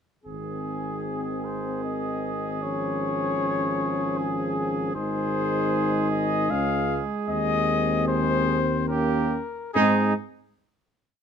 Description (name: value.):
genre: classical, brass quintet.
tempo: 76 BPM.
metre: 3/4.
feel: uneven beats, rubato.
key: Ab major.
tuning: A4 = 440 Hz.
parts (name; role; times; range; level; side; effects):
mellow trumpet; melody; 0.2-10.1 s; Ab4 to F5; -28 LUFS; left 7 dB; none.
warm trombone; accompaniment; 0.2-10.1 s; Eb3 to Bb3; -31 LUFS; right 3 dB; none.
clear trumpet; second line; 0.3-10.1 s; Eb4 to Ab4; -30 LUFS; right 6 dB; none.
mellow French horn; accompaniment; 0.3-10.1 s; C4 to Eb4; -30 LUFS; left 5 dB; none.
mellow tuba; bass; 0.3-10.1 s; Ab1 to Ab2; -29 LUFS; right 4 dB; none.
room: moderate studio reverb, RT60 0.7 s.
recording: minimal, uncompressed stereo recording.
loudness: -23 LUFS.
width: side -7 dB against mid.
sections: 0.3-9.8 A section; 9.8-11.2 final chord.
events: none.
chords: 0.3 Ab; 2.6 Db/Ab; 5.0 Ab; 6.5 Db; 7.3 Ab/Eb; 8.9 Eb7; 9.8 Ab.